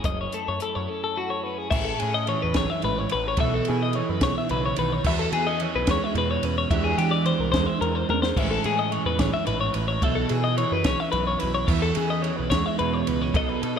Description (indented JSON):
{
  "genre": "math rock and midwest emo",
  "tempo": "72 BPM (dotted quarters)",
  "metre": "6/8",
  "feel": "straight",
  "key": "unclear",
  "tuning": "A4 = 440 Hz",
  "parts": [
    { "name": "clean electric guitar", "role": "accompaniment", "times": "0.0-13.8 s", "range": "E2 to A4", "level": "-28 LUFS", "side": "right 7 dB", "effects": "analog chorus, slapback echo" },
    { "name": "twelve-string electric guitar", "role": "arpeggios", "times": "0.0-13.8 s", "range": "F#4 to E5", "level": "-26 LUFS", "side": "left 5 dB", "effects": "slapback echo" },
    { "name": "growling picked electric bass", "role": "bass", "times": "0.0-13.8 s", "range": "F#1 to E3", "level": "-29 LUFS", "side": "equal", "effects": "overdrive" },
    { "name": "compact cocktail drum kit", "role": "drums", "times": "0.0-13.8 s", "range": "crash cymbal, hi-hat, kick drum, ride cymbal, snare drum, toms", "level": "-28 LUFS", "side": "right 1 dB", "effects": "none" }
  ],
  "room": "moderate concert hall reverb, RT60 2.3 s",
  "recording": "big arena sound",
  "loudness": "-22 LUFS",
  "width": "side -7 dB against mid",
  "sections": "0.0-1.7 A section; 1.7-13.8 B section",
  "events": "drum fill 8.1",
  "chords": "0.0 F#m7; 1.7 Amaj7; 3.4 B9sus4; 6.7 E7alt; 8.4 Amaj7; 10.0 B9sus4",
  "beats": "| 0.05 0.88 | 1.72 2.55 | 3.38 4.21 | 5.05 5.88 | 6.71 7.54 | 8.37 9.20 | 10.03 10.86 | 11.69 12.52 | 13.35"
}